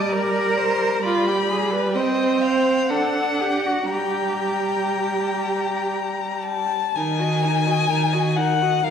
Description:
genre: classical, slow romantic movement for string quartet.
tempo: 57-67 BPM.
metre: 3/4.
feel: rubato.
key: G minor.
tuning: A4 = 440 Hz.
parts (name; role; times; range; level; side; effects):
warm violin; melody; 0.0-8.9 s; F5 to B5; -25 LUFS; left 7 dB; none.
rich violin; second line; 0.0-8.9 s; Bb4 to G5; -28 LUFS; left 2 dB; none.
dark viola; accompaniment; 0.0-8.9 s; G3 to Gb4; -25 LUFS; right 2 dB; none.
rich cello; bass; 0.0-8.9 s; Eb3 to D5; -23 LUFS; right 2 dB; none.
room: wet recital hall reverb, RT60 1.6 s.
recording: recorded in a church or concert hall.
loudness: -19 LUFS.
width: side -7 dB against mid.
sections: 0.0-7.0 A section; 7.0-8.9 B section.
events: none.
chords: 0.0 Gm; 1.0 G7; 1.9 Cm; 2.9 D; 3.9 Gm; 7.0 Ebm.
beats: 0.13 | 1.03 1.95 2.90 | 3.91 4.93 5.95 | 6.95 7.90 8.83.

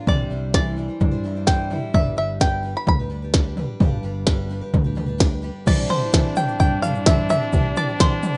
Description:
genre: indie folk with a building arrangement.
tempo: 129 BPM.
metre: 4/4.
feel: straight.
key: C major.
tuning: A4 = 436 Hz.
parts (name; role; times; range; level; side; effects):
bluegrass banjo; melody; 0.0-8.4 s; C5 to B5; -26 LUFS; equal; none.
fingerpicked steel-string acoustic guitar; accompaniment; 0.0-3.8 s; G2 to E4; -34 LUFS; equal; none.
picked steel-string acoustic guitar; accompaniment; 0.0-8.4 s; C3 to C5; -35 LUFS; equal; none.
fingered electric bass; bass; 0.1-7.7 s; G1 to G2; -29 LUFS; equal; none.
minimal click drum kit; drums; 0.1-8.3 s; crash cymbal, kick drum, snare drum, toms; -22 LUFS; equal; none.
dark grand piano; accompaniment; 1.9-8.4 s; G1 to F5; -37 LUFS; equal; none.
stopped French horn; second line; 5.7-8.4 s; D4; -31 LUFS; equal; digital delay.
warm chamber string section; sustained chords; 5.7-8.4 s; E3 to G4; -37 LUFS; equal; none.
egg shaker; percussion; 5.7-8.4 s; none; -46 LUFS; equal; none.
room: small room ambience.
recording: rough home demo mix, nothing above 10.6 kHz.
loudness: -21 LUFS.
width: mono.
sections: 0.0-5.7 A section; 5.7-8.4 B section.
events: none.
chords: 0.1 Cadd9; 1.9 G; 5.7 Cadd9.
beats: | 0.07 0.54 1.01 1.48 | 1.94 2.41 2.88 3.34 | 3.81 4.28 4.74 5.21 | 5.67 6.14 6.61 7.07 | 7.54 8.00.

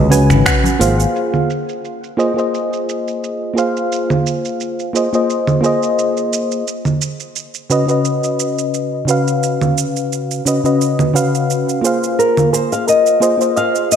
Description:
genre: sunset chillout.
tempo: 87 BPM.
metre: 4/4.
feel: swing 54% on 16ths.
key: Bb minor.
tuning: A4 = 440 Hz.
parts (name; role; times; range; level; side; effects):
mellow FM electric piano; accompaniment; 0.0-14.0 s; Db3 to F5; -16 LUFS; left 1 dB; chorus, auto-pan, digital delay.
fretless electric bass; bass; 0.0-1.0 s; Ab1 to Db2; -14 LUFS; equal; tube saturation, analog chorus.
soft round pluck; arpeggios; 0.1-0.8, 12.5-13.9 s; Ab4 to Ab5; -23 LUFS; right 1 dB; lush chorus, digital delay.
deep house drum kit; drums; 0.1-14.0 s; congas, finger snaps, hi-hat, shaker; -20 LUFS; right 3 dB; overdrive, low-pass filter on hats, small room ambience, low-pass filter on perc, low-pass filter on snare.
congas; percussion; 0.1-0.8 s; none; -27 LUFS; left 4 dB; none.
electronic kick drum; drums; 0.5-0.6 s; none; -20 LUFS; equal; overdrive, small room ambience.
flamenco guitar; melody; 12.2-14.0 s; Bb4 to F5; -14 LUFS; left 2 dB; ping-pong delay.
room: moderate lush hall reverb, RT60 2.5 s.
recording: none.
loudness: -14 LUFS.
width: side -8 dB against mid.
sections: 0.0-1.2 A section; 1.2-14.0 B section.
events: filter sweep on drum 1.2-14.0.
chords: 0.0 Db7sus4; 1.2 Bb9sus4; 6.7 Db9sus4; 12.2 Bb9sus4.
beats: 0.46 | 1.15 1.84 2.53 3.22 | 3.91 4.60 5.29 5.98 | 6.67 7.36 8.05 8.74 | 9.43 10.12 10.81 11.49 | 12.19 12.88 13.56.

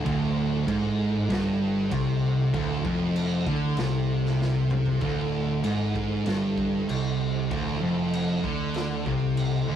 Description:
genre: stoner and doom metal.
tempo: 97 BPM.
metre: 4/4.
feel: straight.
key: D minor.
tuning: A4 = 440 Hz.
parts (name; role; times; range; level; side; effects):
percussive tonewheel organ; sustained chords; 0.0-9.8 s; D3 to A4; -37 LUFS; right 3 dB; chorus vibrato, slow rotary speaker.
heavy high-gain guitar; riff; 0.0-9.8 s; D2 to D3; -35 LUFS; equal; distortion.
thick fuzz guitar; riff; 0.0-9.8 s; D2 to D3; -29 LUFS; left 4 dB; distortion.
thick fuzz guitar; riff; 0.0-9.8 s; D2 to D3; -27 LUFS; right 4 dB; distortion.
growling picked electric bass; bass; 0.0-9.8 s; D1 to D2; -34 LUFS; equal; overdrive.
raw garage drum kit; drums; 0.1-9.5 s; crash cymbal, kick drum, snare drum, toms; -35 LUFS; equal; none.
room: light reverb.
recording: rough rehearsal-room recording, warm saturation.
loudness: -23 LUFS.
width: side -9 dB against mid.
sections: 0.0-5.0 A section; 5.0-9.8 B section.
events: drum fill 4.4-5.0.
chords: 0.0 Dm.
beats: | 0.06 0.68 1.30 1.92 | 2.54 3.16 3.78 4.40 | 5.02 5.64 6.26 6.88 | 7.50 8.12 8.75 9.37.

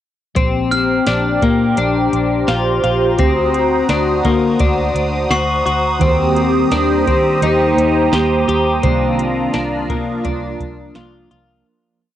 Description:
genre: dream pop.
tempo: 85 BPM.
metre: 4/4.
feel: straight.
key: Bb major.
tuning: A4 = 440 Hz.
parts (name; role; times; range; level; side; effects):
phased analog pad; sustained chords; 0.4-11.6 s; D4 to Eb6; -18 LUFS; right 1 dB; phaser, chorus, cassette tape, plate reverb.
twelve-string electric guitar; arpeggios; 0.4-11.7 s; Bb3 to G4; -18 LUFS; left 5 dB; wide subtle chorus, cassette tape, tape echo.
vintage muted fingered electric bass; bass; 0.4-11.6 s; Bb1 to Eb3; -21 LUFS; right 1 dB; none.
soft vintage rhythm box; drums; 0.4-11.5 s; hi-hat, kick drum, snare drum; -20 LUFS; right 1 dB; cassette tape.
glockenspiel with brass mallets; texture; 0.7-6.3 s; F6 to C7; -25 LUFS; right 1 dB; cassette tape, tape echo.
mellow electric guitar; accompaniment; 6.0-12.2 s; C3 to C5; -21 LUFS; right 6 dB; harmonic tremolo, analog chorus, cassette tape.
room: moderate booth ambience, RT60 0.2 s.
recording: home recording on cassette.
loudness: -13 LUFS.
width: side -11 dB against mid.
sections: 0.4-11.7 verse.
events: fade-out 8.8-11.7.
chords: 0.4 Bb69; 3.2 D7b9b13; 6.0 Eb6; 8.8 Cm11.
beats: | 0.36 1.07 1.77 2.48 | 3.19 3.89 4.60 5.30 | 6.01 6.71 7.42 8.13 | 8.83 9.54 10.24 10.95.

